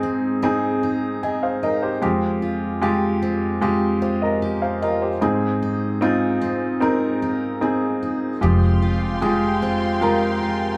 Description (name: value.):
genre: pop.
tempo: 75 BPM.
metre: 4/4.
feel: straight.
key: F minor.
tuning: A4 = 440 Hz.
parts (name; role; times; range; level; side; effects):
warm concert grand piano; accompaniment; 0.0-10.8 s; Ab2 to Ab5; -23 LUFS; equal; none.
picked steel-string acoustic guitar; arpeggios; 0.0-10.8 s; F2 to Ab4; -28 LUFS; equal; none.
warm symphonic string section; sustained chords; 8.4-10.8 s; Ab3 to C6; -29 LUFS; equal; none.
vintage muted fingered electric bass; bass; 8.4-10.8 s; F1; -28 LUFS; equal; none.
room: moderate large studio reverb, RT60 1.1 s.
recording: band playing live in one room.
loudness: -21 LUFS.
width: mono.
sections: 0.0-10.8 A section.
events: none.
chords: 0.0 Ab; 2.0 Fmadd9; 5.2 Ab; 8.4 Fmadd9.